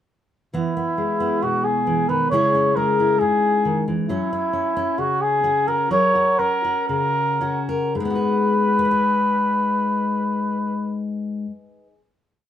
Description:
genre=indie folk with a building arrangement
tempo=108-136 BPM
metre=4/4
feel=straight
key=G# minor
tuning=A4 = 442 Hz
part: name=fingerpicked steel-string acoustic guitar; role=accompaniment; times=0.5-12.0 s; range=G#2 to G#5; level=-22 LUFS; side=left 2 dB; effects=none
part: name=mellow trumpet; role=melody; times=0.6-11.0 s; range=E4 to C#5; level=-20 LUFS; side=equal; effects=none
room=moderate studio reverb, RT60 0.7 s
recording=band playing live in one room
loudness=-18 LUFS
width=side -10 dB against mid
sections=0.5-8.0 verse; 8.0-12.4 final chord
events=slowing down 4.1-8.0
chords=0.5 E; 2.3 C#m; 4.1 F#; 8.0 G#m7

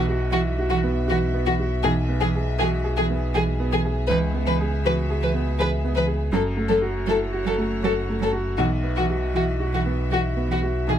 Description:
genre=neoclassical piano and strings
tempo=79 BPM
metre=3/4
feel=rubato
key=unclear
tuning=A4 = 442 Hz
part: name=warm chamber violin section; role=melody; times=0.0-11.0 s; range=F#4 to B4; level=-24 LUFS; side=left 3 dB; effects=none
part: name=clear upright piano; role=accompaniment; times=0.0-11.0 s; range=B1 to G#4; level=-26 LUFS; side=right 2 dB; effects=none
part: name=warm chamber string section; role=sustained chords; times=0.0-11.0 s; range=A3 to E5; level=-35 LUFS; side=left 4 dB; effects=none
part: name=sub bass with octave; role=bass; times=0.0-11.0 s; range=F#1 to C#2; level=-25 LUFS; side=equal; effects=none
part: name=dark cello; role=second line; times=0.3-11.0 s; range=E3 to F#3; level=-28 LUFS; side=right 6 dB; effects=none
room=little or no reverb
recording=none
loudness=-20 LUFS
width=side -10 dB against mid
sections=0.0-11.0 A section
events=none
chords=0.0 Bsus4; 1.8 E/B; 4.1 C#m7; 6.3 F#m; 8.6 Bsus4

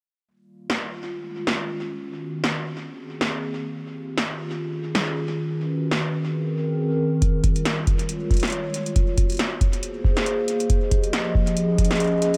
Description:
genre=IDM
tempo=138 BPM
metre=4/4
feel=swing 56% on 16ths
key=unclear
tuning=A4 = 440 Hz
part: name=warbly tape-like pad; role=sustained chords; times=0.7-12.4 s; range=Eb3 to Eb5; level=-28 LUFS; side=equal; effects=chorus, built-in reverb
part: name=electro analog drum machine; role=drums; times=0.7-12.4 s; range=hi-hat, snare drum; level=-30 LUFS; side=equal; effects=delay
part: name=electronic kick drum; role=drums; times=7.2-11.9 s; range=none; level=-22 LUFS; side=equal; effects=none
room=light reverb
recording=none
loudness=-24 LUFS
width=mono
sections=0.3-12.4 A section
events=filter sweep on ambient pad 0.3-12.4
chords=0.3 F9sus4; 0.9 Eb9sus4; 2.0 Db9sus4; 2.7 Bb9sus4; 3.7 F9sus4; 4.4 Eb9sus4; 5.5 Db9sus4; 6.1 Bb9sus4; 7.2 F9sus4; 7.9 Eb9sus4; 9.0 Db9sus4; 9.6 Bb9sus4; 10.7 F9sus4; 11.3 Eb9sus4

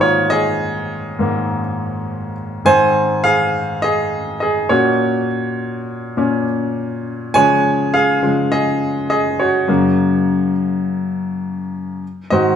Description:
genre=pop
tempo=102 BPM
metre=4/4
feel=straight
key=unclear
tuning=A4 = 444 Hz
part: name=clear baby grand piano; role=solo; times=0.0-12.6 s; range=Gb2 to Ab5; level=-15 LUFS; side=equal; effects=none
room=wet large studio reverb, RT60 1.0 s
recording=band playing live in one room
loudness=-15 LUFS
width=side -8 dB against mid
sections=0.0-2.7 A section; 2.7-12.6 B section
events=grand piano solo 0.0-2.7, 2.7-12.6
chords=0.0 Absus2; 2.7 Ab; 4.7 Gb/Bb; 7.3 Dbadd9; 9.7 Gb; 12.0 Ab

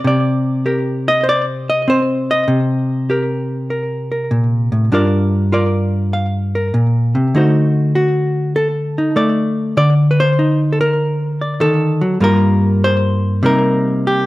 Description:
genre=solo jazz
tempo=99 BPM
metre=4/4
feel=swing 68% on 8ths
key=G minor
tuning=A4 = 441 Hz
part: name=hollow-body jazz guitar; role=solo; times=0.0-14.3 s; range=G2 to F5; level=-13 LUFS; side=equal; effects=slapback echo
room=digital ambience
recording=dry, close 1970s-style studio recording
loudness=-13 LUFS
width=side -18 dB against mid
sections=0.0-14.3 A section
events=none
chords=0.0 Cm7; 4.9 Gm7; 7.3 D7b9; 12.2 Gm7; 13.4 Cm7

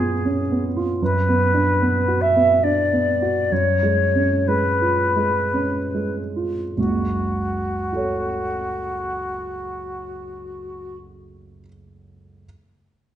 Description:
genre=classical, romantic duo for flute and grand piano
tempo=45-79 BPM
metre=3/4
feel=rubato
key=F# minor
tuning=A4 = 440 Hz
part: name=silver concert flute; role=melody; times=0.0-11.0 s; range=F#4 to E5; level=-21 LUFS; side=left 1 dB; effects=none
part: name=warm grand piano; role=accompaniment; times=0.0-12.5 s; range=F#1 to C#5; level=-22 LUFS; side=right 2 dB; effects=none
room=wet recital hall reverb, RT60 1.4 s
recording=nothing above 10.3 kHz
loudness=-18 LUFS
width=side -10 dB against mid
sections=0.0-6.8 A section; 6.8-10.2 B section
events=slowing down 0.0-6.8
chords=0.0 C#7/F#; 1.0 Bm/F#; 3.5 C#7/F#; 6.8 F#m

